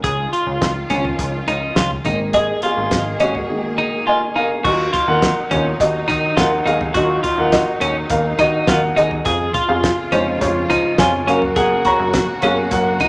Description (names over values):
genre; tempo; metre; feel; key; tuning
piano-driven pop; 104 BPM; 4/4; straight; unclear; A4 = 440 Hz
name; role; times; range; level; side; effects
dark upright piano; accompaniment; 0.0-13.1 s; Eb3 to Bb5; -21 LUFS; equal; none
clear studio string section; sustained chords; 0.0-13.1 s; Db3 to Ab4; -31 LUFS; equal; none
twelve-string electric guitar; riff; 0.0-13.1 s; Db4 to Ab4; -22 LUFS; equal; none
plucky analog bass; bass; 0.0-13.1 s; Ab1 to Gb3; -26 LUFS; equal; none
damped 70s drum kit; drums; 0.0-13.1 s; crash cymbal, hi-hat, kick drum, snare drum, toms; -24 LUFS; equal; none
room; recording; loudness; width
moderate large studio reverb, RT60 1.2 s; none; -18 LUFS; mono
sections
0.0-4.7 A section; 4.7-13.1 B section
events
upright piano solo 0.0-4.7, 4.7-13.1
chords
0.0 Dbadd9; 2.1 Absus2; 4.7 Ebmadd9; 9.3 Db/F; 11.3 Gb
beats
| 0.04 0.61 1.19 1.77 | 2.34 2.92 3.50 4.07 | 4.65 5.23 5.80 6.38 | 6.96 7.53 8.11 8.68 | 9.26 9.84 10.41 10.99 | 11.56 12.14 12.72